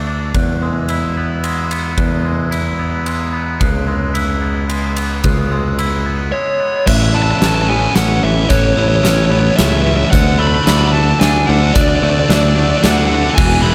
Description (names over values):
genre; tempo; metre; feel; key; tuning
post-rock; 110 BPM; 3/4; straight; A major; A4 = 440 Hz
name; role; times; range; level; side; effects
twangy electric guitar; arpeggios; 0.0-13.7 s; E2 to F#4; -26 LUFS; equal; lush chorus, slapback echo, analog delay
modern bright picked electric bass; bass; 0.0-13.7 s; E1 to E2; -19 LUFS; equal; none
glockenspiel with soft plastic mallets; arpeggios; 0.3-13.7 s; E6 to F#6; -30 LUFS; equal; slapback echo, analog delay
huge arena drum kit; drums; 0.3-13.5 s; crash cymbal, hi-hat, kick drum, ride cymbal, snare drum; -21 LUFS; equal; none
fuzz lead guitar; melody; 6.3-13.7 s; C#5 to B5; -20 LUFS; equal; distortion, slapback echo, analog delay
ethereal airy pad; sustained chords; 8.8-13.7 s; E4 to A5; -32 LUFS; equal; none
sludgy distorted guitar; riff; 6.9-13.7 s; A2 to F#4; -19 LUFS; equal; overdrive, slapback echo
cranked stack guitar; riff; 13.4-13.7 s; E2 to E3; -21 LUFS; equal; overdrive, slapback echo
room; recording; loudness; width
light reverb, small room ambience; none; -15 LUFS; mono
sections
0.0-6.9 A section; 6.9-13.7 B section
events
build-up 6.9-13.7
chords
0.3 Eadd9; 3.6 C#m7; 6.9 Aadd9; 10.1 D